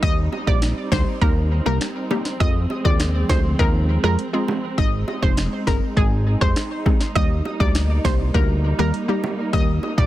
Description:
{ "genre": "dancehall", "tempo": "101 BPM", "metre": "4/4", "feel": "straight", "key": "Eb major", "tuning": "A4 = 440 Hz", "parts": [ { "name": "analog pluck", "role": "melody", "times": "0.0-10.1 s", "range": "Ab4 to Eb5", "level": "-27 LUFS", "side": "equal", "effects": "chorus, tape echo" }, { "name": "hollow square pluck", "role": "accompaniment", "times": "0.0-10.1 s", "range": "G3 to Ab4", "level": "-26 LUFS", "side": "equal", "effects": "chorus" }, { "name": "dark studio string section", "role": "sustained chords", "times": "0.0-10.1 s", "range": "F3 to Eb4", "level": "-29 LUFS", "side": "right 2 dB", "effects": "sidechain pumping" }, { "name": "fat analog bass", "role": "bass", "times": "0.0-10.1 s", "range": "F1 to F2", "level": "-21 LUFS", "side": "equal", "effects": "none" }, { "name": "afro-pop drum kit", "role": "drums", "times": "0.0-10.1 s", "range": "finger snaps, hi-hat, kick drum, rim click, snare drum", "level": "-20 LUFS", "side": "equal", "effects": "vintage 12-bit sampler grit" }, { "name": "bongos", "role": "percussion", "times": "0.0-10.1 s", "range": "none", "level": "-31 LUFS", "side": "right 4 dB", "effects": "none" } ], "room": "little or no reverb", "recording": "dense, heavily limited modern master, faint mains hum", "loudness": "-18 LUFS", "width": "side -14 dB against mid", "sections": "0.0-10.1 A section", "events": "none", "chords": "0.0 Eb; 2.4 Fm; 4.8 Ab; 7.2 Eb", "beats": "| 0.03 0.62 1.22 1.81 | 2.40 3.00 3.59 4.19 | 4.78 5.37 5.97 6.56 | 7.16 7.75 8.35 8.94 | 9.53" }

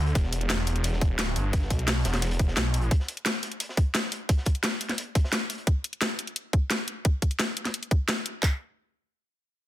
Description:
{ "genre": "dark technical drum and bass", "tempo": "174 BPM", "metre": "4/4", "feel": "straight", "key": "E minor", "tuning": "A4 = 439 Hz", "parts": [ { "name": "snarling distorted saw bass", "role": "bass", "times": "0.0-2.9 s", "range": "E1 to D2", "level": "-26 LUFS", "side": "equal", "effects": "overdrive, sidechain pumping" }, { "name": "crunchy breakbeat drum kit", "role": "drums", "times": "0.1-5.7 s", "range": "hi-hat, snare drum", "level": "-40 LUFS", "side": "equal", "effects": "high-pass filter on hats, high-pass filter on snare, high-pass filter on room" }, { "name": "drum and bass drum kit", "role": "drums", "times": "0.2-8.5 s", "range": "handclaps, kick drum", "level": "-23 LUFS", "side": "equal", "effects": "overdrive" }, { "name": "drum and bass drum kit", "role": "drums", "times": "0.2-8.3 s", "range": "hi-hat, snare drum", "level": "-28 LUFS", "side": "left 1 dB", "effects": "overdrive" } ], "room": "digital ambience", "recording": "dense, heavily limited modern master", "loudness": "-24 LUFS", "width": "side -14 dB against mid", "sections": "0.0-8.4 A section; 8.4-9.7 B section", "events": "none", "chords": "none", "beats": "| 0.15 0.50 0.84 1.19 | 1.53 1.88 2.22 2.57 | 2.91 3.26 3.60 3.95 | 4.29 4.64 4.98 5.33 | 5.67 6.01 6.36 6.71 | 7.05 7.39 7.74 8.08 | 8.43" }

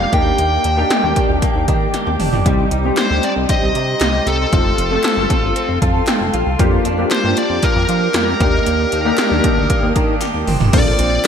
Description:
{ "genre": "1980s-style pop", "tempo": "116 BPM", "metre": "4/4", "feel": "straight", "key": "Bb major", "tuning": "A4 = 440 Hz", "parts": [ { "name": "bluesy overdriven lead guitar", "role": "melody", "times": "0.0-11.3 s", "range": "A4 to G5", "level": "-20 LUFS", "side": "left 1 dB", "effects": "distortion, shimmer reverb" }, { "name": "warm concert grand piano", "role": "accompaniment", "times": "0.0-11.3 s", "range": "Eb3 to A5", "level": "-20 LUFS", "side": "left 2 dB", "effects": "ensemble chorus, shimmer reverb" }, { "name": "ethereal airy pad", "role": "sustained chords", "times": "0.0-10.7 s", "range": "G4 to Eb6", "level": "-26 LUFS", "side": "equal", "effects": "ensemble chorus, built-in reverb, shimmer reverb" }, { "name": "direct-recorded clean electric guitar", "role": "riff", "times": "0.0-11.3 s", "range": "F3 to A4", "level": "-25 LUFS", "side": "right 4 dB", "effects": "lush chorus, shimmer reverb" }, { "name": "chorused synth bass", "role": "bass", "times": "0.0-11.2 s", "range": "F1 to F3", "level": "-20 LUFS", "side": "equal", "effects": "none" }, { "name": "80s electronic pad drums", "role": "drums", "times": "0.1-11.3 s", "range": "crash cymbal, hi-hat, kick drum, snare drum, toms", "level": "-18 LUFS", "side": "equal", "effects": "gated reverb on snare and toms, gated reverb" }, { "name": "group handclap", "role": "percussion", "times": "3.0-11.3 s", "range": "none", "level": "-34 LUFS", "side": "left 3 dB", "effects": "none" } ], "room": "moderate lush hall reverb, RT60 2.3 s", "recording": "bright 1980s-style digital production", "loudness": "-13 LUFS", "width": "side -7 dB against mid", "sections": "0.0-10.7 A section", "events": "drum fill 1.9-2.5, 10.2-10.7; grand piano fill 5.6-6.6", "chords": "0.1 Ebmaj7; 2.5 Cm; 4.5 F; 6.6 Bb6/F; 8.4 Ebmaj7; 10.7 Bbmaj9", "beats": "| 0.39 0.91 1.42 1.94 | 2.46 2.97 3.49 4.01 | 4.53 5.04 5.56 6.08 | 6.59 7.11 7.63 8.15 | 8.66 9.18 9.70 10.22 | 10.73 11.25" }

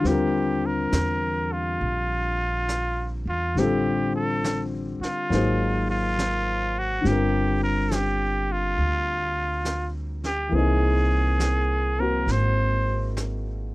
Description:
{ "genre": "jazz ballad", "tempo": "69 BPM", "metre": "4/4", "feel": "swing 66% on 8ths", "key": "Eb major", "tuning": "A4 = 444 Hz", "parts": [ { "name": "trumpet with straight mute", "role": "melody", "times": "0.0-13.2 s", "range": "F4 to C5", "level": "-26 LUFS", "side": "right 1 dB", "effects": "none" }, { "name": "warm upright piano", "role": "accompaniment", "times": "0.0-13.7 s", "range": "D3 to C5", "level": "-27 LUFS", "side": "left 3 dB", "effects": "none" }, { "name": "upright bass", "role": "bass", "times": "0.0-13.7 s", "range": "G1 to Fb2", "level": "-26 LUFS", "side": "right 1 dB", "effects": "none" }, { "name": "vintage brush drum kit", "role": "drums", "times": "0.0-13.7 s", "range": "brushed snare drum, hi-hat, snare drum", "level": "-34 LUFS", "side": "equal", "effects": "none" } ], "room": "little or no reverb", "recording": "dry, close 1970s-style studio recording", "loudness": "-22 LUFS", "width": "side -19 dB against mid", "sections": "0.1-13.7 A section", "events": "none", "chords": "0.1 Ebmaj9; 3.6 F69/A; 5.3 Ab13; 7.1 Gm7; 10.5 C7alt", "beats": "| 0.05 0.93 1.81 2.69 | 3.57 4.44 5.32 6.19 | 7.06 7.92 8.79 9.66 | 10.53 11.40 12.28 13.16" }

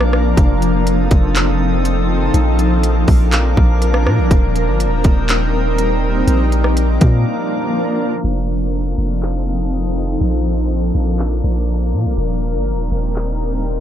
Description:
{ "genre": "hip hop, atmospheric cloud-rap", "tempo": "122 BPM", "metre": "4/4", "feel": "half-time", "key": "Bb major", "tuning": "A4 = 440 Hz", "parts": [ { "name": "granular cloud pad", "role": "sustained chords", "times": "0.0-13.8 s", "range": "F3 to Bb4", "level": "-19 LUFS", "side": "left 1 dB", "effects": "built-in reverb, sidechain pumping" }, { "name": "long sustained 808-style bass", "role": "bass", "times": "0.0-13.8 s", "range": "Eb1 to Bb2", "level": "-17 LUFS", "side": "equal", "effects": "none" }, { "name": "trap drum kit", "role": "drums", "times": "0.0-13.3 s", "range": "handclaps, hi-hat, kick drum, rim click", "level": "-15 LUFS", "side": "equal", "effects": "none" }, { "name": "drifting glass-harmonics texture", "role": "texture", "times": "0.0-13.8 s", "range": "A4 to Eb6", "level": "-29 LUFS", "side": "equal", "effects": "chorus, built-in reverb" } ], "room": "little or no reverb", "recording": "low-pass filter", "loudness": "-14 LUFS", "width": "side -10 dB against mid", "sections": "0.0-8.2 A section; 8.2-13.8 B section", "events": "break 7.3-8.2; filter sweep 8.2-13.8", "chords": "0.4 F7; 2.3 Bb; 4.3 Eb6; 6.3 Bb; 8.2 F7; 10.2 Bb; 12.2 Eb6", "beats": "| 0.37 0.87 1.36 1.85 | 2.34 2.83 3.33 3.82 | 4.31 4.80 5.29 5.78 | 6.28 6.77 7.26 7.75 | 8.24 8.73 9.23 9.72 | 10.21 10.70 11.19 11.69 | 12.18 12.67 13.16 13.65" }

